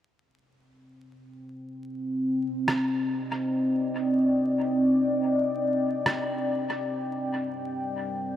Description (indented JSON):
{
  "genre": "ambient dub",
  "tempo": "free time",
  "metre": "none",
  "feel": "none",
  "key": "C minor",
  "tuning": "A4 = 439 Hz",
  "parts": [
    { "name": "deep dark ambient pad", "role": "sustained chords", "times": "1.9-8.4 s", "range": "G3 to G5", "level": "-25 LUFS", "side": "equal", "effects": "chorus, built-in reverb" },
    { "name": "electronic rim click", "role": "drums", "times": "2.7-6.2 s", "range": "none", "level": "-31 LUFS", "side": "right 1 dB", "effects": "dub echo" }
  ],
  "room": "wet plate reverb, RT60 3.7 s",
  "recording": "dreamy mix soaked in reverb, vinyl crackle",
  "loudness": "-24 LUFS",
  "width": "side -11 dB against mid",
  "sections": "0.1-8.4 A section",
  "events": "none",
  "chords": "0.1 Cmadd9; 6.9 Gm"
}